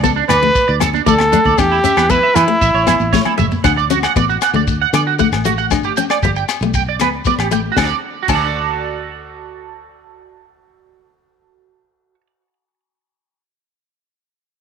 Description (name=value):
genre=highlife guitar band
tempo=116 BPM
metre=4/4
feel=straight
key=D major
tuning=A4 = 444 Hz
part: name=picked steel-string acoustic guitar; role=accompaniment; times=0.0-8.4 s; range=A3 to D4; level=-20 LUFS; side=left 12 dB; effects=none
part: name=electric guitar at the edge of break-up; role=arpeggios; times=0.0-12.3 s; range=D4 to G5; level=-18 LUFS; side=right 13 dB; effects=analog chorus, tape echo
part: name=fingered electric bass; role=bass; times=0.0-12.2 s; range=F#1 to E3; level=-21 LUFS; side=equal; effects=none
part: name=tight funk drum kit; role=drums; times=0.0-8.4 s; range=crash cymbal, hi-hat, kick drum, rim click, snare drum, toms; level=-22 LUFS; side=left 2 dB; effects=none
part: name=congas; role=percussion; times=0.0-3.6 s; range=none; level=-25 LUFS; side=right 14 dB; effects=none
part: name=shekere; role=percussion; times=0.0-8.4 s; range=none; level=-26 LUFS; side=left 5 dB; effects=none
part: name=bright trumpet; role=melody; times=0.3-3.4 s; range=E4 to B4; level=-14 LUFS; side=equal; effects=none
part: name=agogo bells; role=percussion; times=0.3-8.4 s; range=none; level=-24 LUFS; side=left 13 dB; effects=none
room=light reverb, studio reverb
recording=1960s-style stereo with parts hard left and right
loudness=-12 LUFS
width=side -6 dB against mid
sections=0.0-3.6 A section; 3.6-7.8 B section; 7.8-11.9 C section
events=drum fill 3.1-3.6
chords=0.0 D5; 1.6 Em; 2.6 A; 3.6 D; 5.7 G; 7.8 D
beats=0.04 0.55 1.07 | 1.58 2.10 2.61 3.13 | 3.64 4.16 4.67 5.19 | 5.70 6.22 6.74 7.25 | 7.77 8.29 8.80 9.32 | 9.84 10.36 10.88 11.39